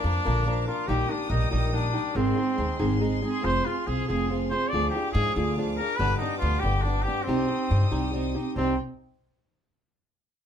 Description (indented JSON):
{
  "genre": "mexican folk, mariachi",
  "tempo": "94 BPM (dotted quarters)",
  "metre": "6/8",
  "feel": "straight",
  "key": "C minor",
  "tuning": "A4 = 439 Hz",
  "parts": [
    { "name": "warm trumpet", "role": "melody", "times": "0.0-8.8 s", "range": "C4 to D5", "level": "-29 LUFS", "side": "left 1 dB", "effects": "none" },
    { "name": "flamenco guitar", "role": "accompaniment", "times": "0.0-8.7 s", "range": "G2 to Bb4", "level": "-28 LUFS", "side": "right 1 dB", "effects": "none" },
    { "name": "clear studio violin section", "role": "sustained chords", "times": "0.0-8.8 s", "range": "Eb4 to Eb6", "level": "-38 LUFS", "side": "left 1 dB", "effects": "none" },
    { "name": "upright bass", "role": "bass", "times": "0.0-8.8 s", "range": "F1 to Ab2", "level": "-27 LUFS", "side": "equal", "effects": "none" }
  ],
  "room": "moderate small room reverb, RT60 0.5 s",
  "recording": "band playing live in one room",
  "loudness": "-23 LUFS",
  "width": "side -8 dB against mid",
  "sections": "0.0-8.6 A section; 8.6-9.8 B section",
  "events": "none",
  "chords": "0.0 Bb; 0.9 Eb/Bb; 2.2 Ab; 3.4 Fm; 4.7 Ddim; 6.0 G; 7.3 Cm",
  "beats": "0.25 | 0.89 1.52 | 2.16 2.80 | 3.45 4.09 | 4.73 5.36 | 5.99 6.63 | 7.27 7.91 | 8.56"
}